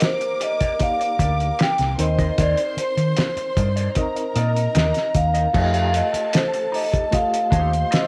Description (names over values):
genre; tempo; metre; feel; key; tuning
lush 1970s-style soul; 76 BPM; 4/4; straight; C dorian; A4 = 443 Hz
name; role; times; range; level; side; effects
vibraphone with soft mallets; melody; 0.0-8.1 s; C5 to G5; -25 LUFS; equal; none
warm studio string section; second line; 0.0-8.1 s; A4 to D6; -34 LUFS; equal; none
overdriven reed electric piano; accompaniment; 0.0-8.1 s; A3 to Eb5; -34 LUFS; equal; fast tremolo
electric guitar through a small old amp; riff; 0.0-8.1 s; Eb4 to Eb5; -36 LUFS; equal; wah
cloth-damped thuddy drum kit; drums; 0.0-8.1 s; crash cymbal, hi-hat, kick drum, snare drum; -25 LUFS; equal; none
hollow-body short-scale fingered electric bass; bass; 1.2-7.8 s; C2 to Eb3; -24 LUFS; equal; tube saturation
room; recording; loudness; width
light reverb, studio reverb; none; -21 LUFS; mono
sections
0.0-5.5 A section; 5.5-8.1 A section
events
none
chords
0.0 Cm9 (rootless); 2.0 Cm9/Eb; 5.5 F9